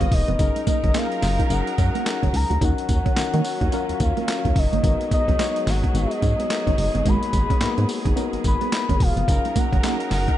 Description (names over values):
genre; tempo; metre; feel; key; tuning
R&B, new jack swing; 108 BPM; 4/4; swing 61% on 16ths; G# dorian; A4 = 440 Hz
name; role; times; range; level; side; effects
soft octave-layered synth lead; melody; 0.0-10.4 s; D#5 to B5; -26 LUFS; left 2 dB; chorus, tremolo
soft electric-piano-like synth keys; accompaniment; 0.0-10.4 s; A#3 to C#5; -29 LUFS; left 7 dB; chorus
rich studio string section; sustained chords; 0.0-10.4 s; D#3 to D#5; -32 LUFS; right 2 dB; none
mellow electric guitar; riff; 0.0-10.3 s; G#3 to F#4; -30 LUFS; right 8 dB; ensemble chorus
solid FM bass; bass; 0.0-10.3 s; E1 to D#3; -23 LUFS; equal; none
boom bap sampler-style drum kit; drums; 0.0-10.4 s; handclaps, hi-hat, kick drum, snare drum, tambourine; -23 LUFS; equal; none
room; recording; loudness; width
digital ambience; nothing above 10.6 kHz; -19 LUFS; side -13 dB against mid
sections
0.0-10.4 A section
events
none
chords
0.4 F#6; 2.6 D#m7; 4.8 G#m7; 9.3 F#6